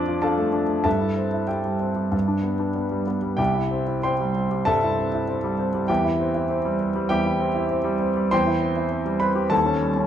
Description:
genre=classical, virtuoso piano study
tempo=96 BPM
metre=4/4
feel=uneven beats, rubato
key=C major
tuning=A4 = 439 Hz
part: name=clear grand piano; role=solo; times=0.0-10.1 s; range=C2 to D6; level=-20 LUFS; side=equal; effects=none
room=wet recital hall reverb, RT60 1.4 s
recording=dark, warm production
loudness=-20 LUFS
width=side -10 dB against mid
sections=0.0-10.1 A section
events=none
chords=0.0 Dm/F; 0.8 C/G; 2.1 G; 3.4 C; 5.9 C/E; 9.5 Eb7

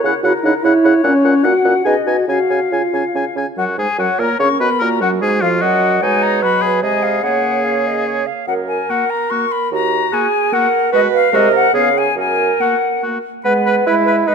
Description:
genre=quick classical-period movement for wind quintet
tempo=146 BPM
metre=3/4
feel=straight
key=F# major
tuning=A4 = 440 Hz
part: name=silver concert flute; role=melody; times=0.0-14.3 s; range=A#4 to C#6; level=-19 LUFS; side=left 9 dB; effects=none
part: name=mellow French horn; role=accompaniment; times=0.0-14.3 s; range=E#3 to G#4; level=-19 LUFS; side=equal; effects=none
part: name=mellow bassoon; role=bass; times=0.0-14.3 s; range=D#2 to E4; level=-20 LUFS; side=right 4 dB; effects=none
part: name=clear oboe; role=second line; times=0.1-14.3 s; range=D#4 to G#5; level=-21 LUFS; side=left 3 dB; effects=none
part: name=warm clarinet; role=accompaniment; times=0.1-14.3 s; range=C#4 to E#5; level=-20 LUFS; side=right 10 dB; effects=none
room=moderate concert hall reverb, RT60 2.1 s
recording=close, detailed microphones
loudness=-13 LUFS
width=side -6 dB against mid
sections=0.0-3.6 A section; 3.6-13.4 B section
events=none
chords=0.0 F#7/C#; 1.0 F#/A#; 1.9 G#m7/B; 2.3 C#; 3.6 F#; 4.8 D#m; 6.0 G#m7/B; 6.8 G#/B#; 7.2 C#; 8.5 F#; 9.7 D#m; 10.9 G#m7/B; 11.3 G#7/B#; 11.7 C#7; 12.2 F#; 13.4 G#m

